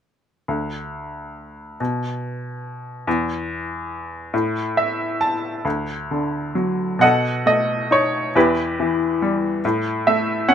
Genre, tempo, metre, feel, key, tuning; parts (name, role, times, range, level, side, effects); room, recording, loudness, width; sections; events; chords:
classical, lyrical solo piano; 46 BPM (dotted quarters); 6/8; uneven beats, rubato; D major; A4 = 440 Hz
bright upright piano; solo; 0.5-10.5 s; D2 to A5; -19 LUFS; equal
light reverb; close, detailed microphones; -19 LUFS; side -8 dB against mid
0.5-5.7 A section; 5.7-10.5 B section
upright piano fill 4.3-5.7, 9.6-10.5
0.5 N.C.; 5.7 D; 7.0 B7; 8.4 Em; 9.6 A5